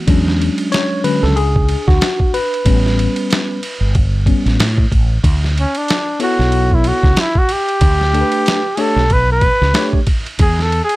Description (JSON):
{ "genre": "hip hop, jazz-hop", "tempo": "93 BPM", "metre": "4/4", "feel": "swing 58% on 16ths", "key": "D major", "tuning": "A4 = 440 Hz", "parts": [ { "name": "tine electric piano", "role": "accompaniment", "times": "0.0-10.0 s", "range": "D3 to C#5", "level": "-18 LUFS", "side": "left 2 dB", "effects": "medium stereo tremolo" }, { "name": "mellow fretless electric bass", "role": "bass", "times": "0.1-10.8 s", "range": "G1 to A2", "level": "-15 LUFS", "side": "equal", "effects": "none" }, { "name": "boom bap sampler-style drum kit", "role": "drums", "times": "0.1-11.0 s", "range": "hi-hat, kick drum, ride cymbal, snare drum", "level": "-17 LUFS", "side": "equal", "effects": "none" }, { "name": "breathy flugelhorn", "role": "melody", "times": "5.6-11.0 s", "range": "C#4 to B4", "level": "-16 LUFS", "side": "equal", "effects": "none" } ], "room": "little or no reverb", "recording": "none", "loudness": "-12 LUFS", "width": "side -18 dB against mid", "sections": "0.0-5.2 A section; 5.2-11.0 A section", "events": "tine electric piano solo 0.0-5.2; flugelhorn solo 5.2-11.0", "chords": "0.1 E13; 2.7 A9; 5.2 D5; 7.8 G; 10.4 E" }